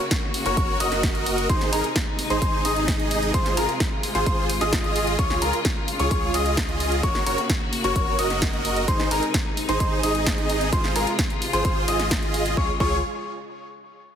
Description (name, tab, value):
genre	EDM, festival progressive house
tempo	130 BPM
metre	4/4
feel	straight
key	Db major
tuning	A4 = 440 Hz
part	clear symphonic string section	sustained chords	0.0-12.8 s	C3 to Gb4	-30 LUFS	left 2 dB	sidechain pumping
part	big-room dance drum kit	drums	0.1-12.5 s	hi-hat, snare drum	-28 LUFS	equal	studio reverb
part	electronic kick drum	drums	0.1-12.9 s	none	-25 LUFS	equal	studio reverb
part	warm baby grand piano	arpeggios	0.5-13.0 s	Bb5 to Eb6	-28 LUFS	left 4 dB	sidechain pumping, tape echo
part	supersaw chords	riff	0.5-13.0 s	Eb4 to Eb5	-26 LUFS	right 2 dB	wide subtle chorus, sidechain pumping, tape echo
part	saturated sub bass	bass	0.5-13.0 s	Gb1 to Db2	-30 LUFS	equal	sidechain pumping
room	light reverb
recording	heavily compressed radio sound, multiband compression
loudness	-20 LUFS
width	side -8 dB against mid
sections	0.0-12.6 A section; 12.6-14.2 B section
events	drop 0.0-12.6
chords	0.0 Gb; 1.5 Ab; 3.3 Fm/Ab; 5.2 Db; 7.0 Gb; 8.9 Ab; 10.7 Fm/Ab; 12.6 Db